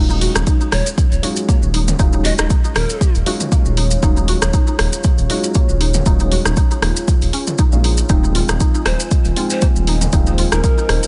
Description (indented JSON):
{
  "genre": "afro house",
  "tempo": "118 BPM",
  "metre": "4/4",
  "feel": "swing 55% on 16ths",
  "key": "Eb dorian",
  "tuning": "A4 = 436 Hz",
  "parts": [
    { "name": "dark analog pad", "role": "sustained chords", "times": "0.9-11.1 s", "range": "F4 to Ab5", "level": "-31 LUFS", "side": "equal", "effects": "chorus, phaser, sidechain pumping" },
    { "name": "mallet-like synth pluck", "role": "arpeggios", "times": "0.0-10.9 s", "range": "Bb3 to Gb4", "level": "-29 LUFS", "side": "equal", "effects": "ensemble chorus, sidechain pumping, digital delay" },
    { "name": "felt-muted upright piano", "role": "stabs", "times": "0.0-11.1 s", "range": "F3 to F4", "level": "-27 LUFS", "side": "equal", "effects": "sidechain pumping, digital delay" },
    { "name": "dark detuned saw bass", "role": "bass", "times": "0.0-11.0 s", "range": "Eb1 to Bb1", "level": "-20 LUFS", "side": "equal", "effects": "sidechain pumping" },
    { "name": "maracas", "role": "percussion", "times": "0.1-11.1 s", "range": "none", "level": "-29 LUFS", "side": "equal", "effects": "none" },
    { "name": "deep house drum kit", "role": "drums", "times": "0.2-11.1 s", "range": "hi-hat, rim click, toms", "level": "-24 LUFS", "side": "equal", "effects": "none" },
    { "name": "electronic kick drum", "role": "drums", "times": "0.5-10.8 s", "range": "none", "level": "-17 LUFS", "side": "equal", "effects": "none" },
    { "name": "breathy bright large pan pipes", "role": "melody", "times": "0.7-3.1, 8.9-11.1 s", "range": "Bb4 to Eb5", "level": "-28 LUFS", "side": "equal", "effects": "vintage 12-bit sampler grit, digital delay" }
  ],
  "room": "digital ambience",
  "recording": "nothing above 10.8 kHz",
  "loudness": "-16 LUFS",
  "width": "mono",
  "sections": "0.0-11.1 A section",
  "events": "none",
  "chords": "0.0 Ebm11; 8.1 Fm7/Eb",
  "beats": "0.47 0.98 1.49 | 1.99 2.50 3.01 3.52 | 4.03 4.54 5.04 5.55 | 6.06 6.57 7.08 7.59 | 8.10 8.60 9.11 9.62 | 10.13 10.64"
}